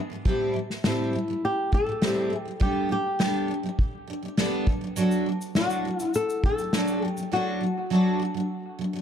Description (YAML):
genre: acoustic pop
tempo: 102 BPM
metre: 4/4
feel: straight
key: unclear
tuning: A4 = 439 Hz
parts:
  - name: picked steel-string acoustic guitar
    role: accompaniment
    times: 0.0-9.0 s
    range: G#2 to A4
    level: -26 LUFS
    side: right 1 dB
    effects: double-tracked left and right
  - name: unplugged drum kit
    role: drums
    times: 0.3-7.3 s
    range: kick drum, shaker, snare drum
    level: -26 LUFS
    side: equal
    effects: none
  - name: flamenco guitar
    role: melody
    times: 0.9-9.0 s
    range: E4 to A4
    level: -28 LUFS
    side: left 2 dB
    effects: tape echo
room: light reverb, small room ambience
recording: dark, warm production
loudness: -23 LUFS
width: side -8 dB against mid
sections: 0.0-9.0 A section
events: none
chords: 0.3 Am7; 2.6 Gadd9; 4.7 D/F#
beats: | 0.26 0.85 1.44 2.02 | 2.61 3.20 3.79 4.38 | 4.97 5.56 6.15 6.74 | 7.32 7.91 8.50